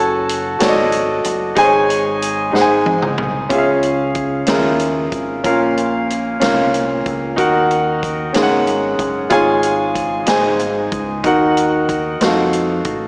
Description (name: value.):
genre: slow gospel.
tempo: 62 BPM (dotted quarters).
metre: 6/8.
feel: straight.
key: Db major.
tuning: A4 = 438 Hz.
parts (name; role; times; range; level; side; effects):
clear concert grand piano; accompaniment; 0.0-13.1 s; Ab2 to A5; -17 LUFS; equal; none.
deep dub fingered electric bass; bass; 0.0-13.1 s; Gb1 to F2; -29 LUFS; equal; none.
swinging big-band drum kit; drums; 0.3-13.0 s; hi-hat, kick drum, snare drum, toms; -26 LUFS; equal; none.
room: wet lush hall reverb, RT60 2.9 s.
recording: dreamy mix soaked in reverb, small speaker sound.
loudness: -16 LUFS.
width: mono.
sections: 0.0-3.5 A section; 3.5-13.1 B section.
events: drum fill 2.5-3.5.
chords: 0.0 Gbm; 1.6 Absus4; 2.5 Ab; 3.5 Db; 5.4 Bbm; 7.4 Ebm; 8.3 Ab9sus4; 9.3 Db/Ab; 10.3 Ab; 11.2 Ebm; 12.2 F7b9.